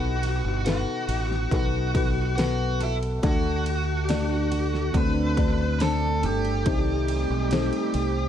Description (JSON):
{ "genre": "pop ballad", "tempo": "70 BPM", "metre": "4/4", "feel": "straight", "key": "unclear", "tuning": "A4 = 445 Hz", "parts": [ { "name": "fuzz lead guitar", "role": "melody", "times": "0.0-8.3 s", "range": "E4 to B5", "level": "-29 LUFS", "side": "equal", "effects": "distortion" }, { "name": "felt-muted upright piano", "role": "accompaniment", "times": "0.0-8.3 s", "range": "B2 to D5", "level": "-29 LUFS", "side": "left 6 dB", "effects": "none" }, { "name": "fingerpicked steel-string acoustic guitar", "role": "arpeggios", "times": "0.0-8.3 s", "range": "B2 to B4", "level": "-34 LUFS", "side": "right 5 dB", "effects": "none" }, { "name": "deep dub fingered electric bass", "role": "bass", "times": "0.0-8.3 s", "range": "G1 to D2", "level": "-27 LUFS", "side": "right 1 dB", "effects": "none" }, { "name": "pop drum kit", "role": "drums", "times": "0.2-8.1 s", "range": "kick drum, ride cymbal, snare drum", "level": "-29 LUFS", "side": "equal", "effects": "none" }, { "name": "chorused pulse-width pad", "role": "sustained chords", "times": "3.2-8.3 s", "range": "G3 to D5", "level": "-33 LUFS", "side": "right 4 dB", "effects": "none" } ], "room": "digital ambience", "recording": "dark, warm production", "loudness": "-22 LUFS", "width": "side -9 dB against mid", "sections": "0.0-8.3 A section", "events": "none", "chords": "0.0 B7; 3.2 D; 6.7 Cm6" }